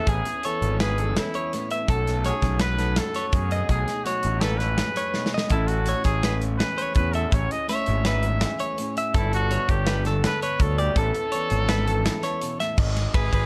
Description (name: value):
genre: math rock and midwest emo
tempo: 165 BPM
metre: 5/4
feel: straight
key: A major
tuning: A4 = 439 Hz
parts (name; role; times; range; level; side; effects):
- breathy trumpet; melody; 0.0-13.5 s; E4 to E5; -31 LUFS; equal; plate reverb, tape echo
- mellow electric guitar; accompaniment; 0.0-12.8 s; E2 to A4; -35 LUFS; equal; plate reverb
- clean electric guitar; arpeggios; 0.0-13.5 s; G#4 to E5; -31 LUFS; equal; plate reverb, tape echo
- fuzz picked electric bass; bass; 0.1-13.5 s; G1 to F#2; -27 LUFS; equal; overdrive
- modern studio drum kit; drums; 0.1-13.4 s; crash cymbal, hi-hat, kick drum, ride cymbal, snare drum; -28 LUFS; equal; none
room: light reverb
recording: dark, warm production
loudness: -24 LUFS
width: mono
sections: 0.0-12.8 A section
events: drum fill 5.2-5.5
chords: 0.0 Amaj9; 1.9 B13; 5.5 Amaj7; 9.2 Gmaj9; 11.0 Amaj9; 12.8 G#m